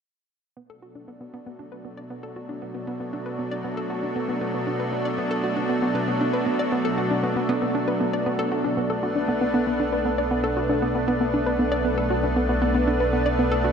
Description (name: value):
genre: ambient, sequencer-driven space music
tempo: 117 BPM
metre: 4/4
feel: straight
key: B minor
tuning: A4 = 440 Hz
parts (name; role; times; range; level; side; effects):
- lush unison pad; sustained chords; 0.6-13.7 s; B2 to D4; -25 LUFS; right 1 dB; chorus, shimmer reverb
- hollow square pluck; riff; 0.6-13.7 s; B3 to D5; -26 LUFS; equal; chorus, analog delay
- concert harp; arpeggios; 8.8-13.7 s; A3 to B4; -41 LUFS; left 5 dB; none
- fat analog bass; bass; 8.8-13.7 s; B1; -29 LUFS; left 1 dB; none
room: wet lush hall reverb, RT60 3.2 s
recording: dark, warm production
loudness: -22 LUFS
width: side -7 dB against mid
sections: 0.6-8.8 A section; 8.8-13.7 B section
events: fade-in on synth arpeggio sound 0.6-8.8; fade-in on analog synth pad 0.6-8.8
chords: 0.6 Bm7